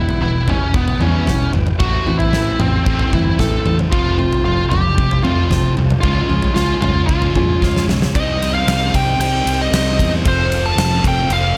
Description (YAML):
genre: quiet-loud alternative rock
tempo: 114 BPM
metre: 4/4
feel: straight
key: unclear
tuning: A4 = 440 Hz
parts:
  - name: bluesy overdriven lead guitar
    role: melody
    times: 0.0-11.6 s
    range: B3 to A5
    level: -22 LUFS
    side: equal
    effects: distortion
  - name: tonewheel organ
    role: sustained chords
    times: 0.0-11.6 s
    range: C4 to A5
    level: -33 LUFS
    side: equal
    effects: none
  - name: picked steel-string acoustic guitar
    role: arpeggios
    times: 0.0-8.0 s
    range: E3 to F4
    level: -26 LUFS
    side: equal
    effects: none
  - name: thick fuzz guitar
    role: riff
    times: 0.0-11.6 s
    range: E2 to Db4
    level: -24 LUFS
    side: equal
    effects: distortion
  - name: fingered electric bass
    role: bass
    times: 0.0-11.5 s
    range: E1 to F2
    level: -23 LUFS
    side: equal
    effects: none
  - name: huge arena drum kit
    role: drums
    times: 0.1-11.4 s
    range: kick drum, ride cymbal, snare drum, toms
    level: -21 LUFS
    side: equal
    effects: none
room: light reverb, small room ambience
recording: none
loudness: -16 LUFS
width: mono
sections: 0.0-8.1 A section; 8.1-11.6 B section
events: drum fill 7.6-8.1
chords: 0.0 Em; 1.8 Am; 3.9 F; 6.0 Db; 8.1 Cm; 10.3 F